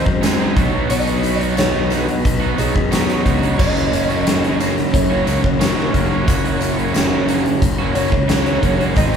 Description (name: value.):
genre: classic rock.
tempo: 89 BPM.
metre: 4/4.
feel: straight.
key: F# major.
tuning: A4 = 439 Hz.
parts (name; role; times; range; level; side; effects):
electric slide guitar; melody; 0.0-9.2 s; G#4 to D#5; -24 LUFS; left 1 dB; none.
crunchy overdriven guitar; riff; 0.0-9.2 s; F#2 to D#4; -23 LUFS; left 5 dB; none.
crunchy overdriven guitar; riff; 0.0-9.2 s; F#2 to G#4; -21 LUFS; right 5 dB; none.
fuzz fingered electric bass; bass; 0.0-9.2 s; F#1 to F#2; -21 LUFS; left 1 dB; overdrive.
huge arena drum kit; drums; 0.1-9.2 s; crash cymbal, hi-hat, kick drum, snare drum; -19 LUFS; equal; none.
tambourine; percussion; 0.2-9.1 s; none; -37 LUFS; left 6 dB; none.
room: moderate large studio reverb, RT60 1.1 s.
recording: band playing live in one room.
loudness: -14 LUFS.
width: side -7 dB against mid.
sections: 0.0-9.2 A section.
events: none.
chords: 0.0 G#; 0.6 B; 3.6 F#.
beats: 0.22 | 0.90 1.57 2.24 2.91 | 3.58 4.26 4.93 5.60 | 6.27 6.94 7.62 8.29 | 8.96.